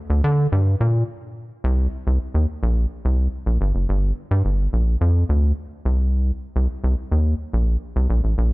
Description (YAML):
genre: funk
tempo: 107 BPM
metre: 4/4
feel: straight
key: C dorian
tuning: A4 = 437 Hz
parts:
  - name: rubbery square bass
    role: solo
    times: 0.1-8.5 s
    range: F#1 to D3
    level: -18 LUFS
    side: equal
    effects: none
room: light reverb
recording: none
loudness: -19 LUFS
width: side -22 dB against mid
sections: 0.0-1.6 A section; 1.6-8.5 B section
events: break 1.1-1.6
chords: none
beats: 0.53 1.09 | 1.65 2.21 2.77 3.33 | 3.89 4.45 5.01 5.57 | 6.13 6.69 7.25 7.82 | 8.38